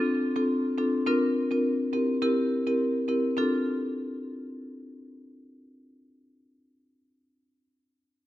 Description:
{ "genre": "afrobeats", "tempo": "104 BPM", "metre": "4/4", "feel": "swing 55% on 16ths", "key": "D minor", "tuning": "A4 = 440 Hz", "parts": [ { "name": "marimba with medium mallets", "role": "accompaniment", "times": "0.0-7.1 s", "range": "C4 to Bb4", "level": "-25 LUFS", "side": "left 1 dB", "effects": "none" } ], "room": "light reverb", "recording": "dark, warm production", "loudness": "-24 LUFS", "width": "side -14 dB against mid", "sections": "0.0-3.4 A section; 3.4-5.7 B section", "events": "none", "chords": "0.0 Dm7; 1.1 Bbadd9; 1.9 C7; 3.4 Dm7" }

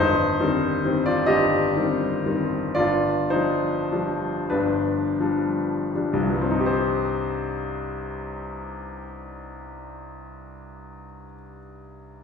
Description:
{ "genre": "classical, romantic nocturne for solo piano", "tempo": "26-46 BPM (dotted quarters)", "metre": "12/8", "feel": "rubato", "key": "C minor", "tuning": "A4 = 440 Hz", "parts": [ { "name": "warm concert grand piano", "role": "solo", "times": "0.0-12.2 s", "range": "G1 to Eb5", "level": "-22 LUFS", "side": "left 2 dB", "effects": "none" } ], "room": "wet recital hall reverb, RT60 1.3 s", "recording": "recorded in a church or concert hall", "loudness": "-21 LUFS", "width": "side -6 dB against mid", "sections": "0.0-6.7 A section; 6.7-12.2 B section", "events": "slowing down 0.0-6.7", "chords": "0.0 Cm/G; 2.8 G7; 6.7 Cm" }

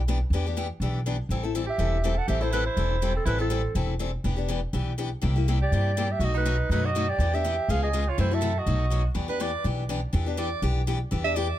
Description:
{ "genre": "acoustic string swing (jazz manouche)", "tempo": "244 BPM", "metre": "4/4", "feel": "swing 54% on 8ths", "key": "E minor", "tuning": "A4 = 440 Hz", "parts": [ { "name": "upright bass", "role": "bass", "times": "0.0-11.5 s", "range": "E1 to G2", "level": "-26 LUFS", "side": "equal", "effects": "none" }, { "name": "picked steel-string acoustic guitar", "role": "accompaniment", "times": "0.1-11.5 s", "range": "B2 to A4", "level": "-30 LUFS", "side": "left 5 dB", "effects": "none" }, { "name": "growling clarinet", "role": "melody", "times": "1.7-9.1 s", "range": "A4 to F#5", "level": "-29 LUFS", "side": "right 2 dB", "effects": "none" }, { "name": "warm soprano saxophone", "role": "second line", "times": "1.7-11.6 s", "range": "C4 to E5", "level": "-33 LUFS", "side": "right 5 dB", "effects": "analog delay" } ], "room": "light reverb", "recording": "close, detailed microphones", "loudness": "-24 LUFS", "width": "side -12 dB against mid", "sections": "0.0-9.2 A section; 9.2-11.6 B section", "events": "soprano saxophone solo 9.2-11.6", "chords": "0.0 Em7; 1.3 Am7; 4.2 Em7; 5.2 C7; 6.2 B7; 7.2 Em7; 7.7 C#7; 8.2 F#m7b5; 8.7 B7; 9.2 Em7" }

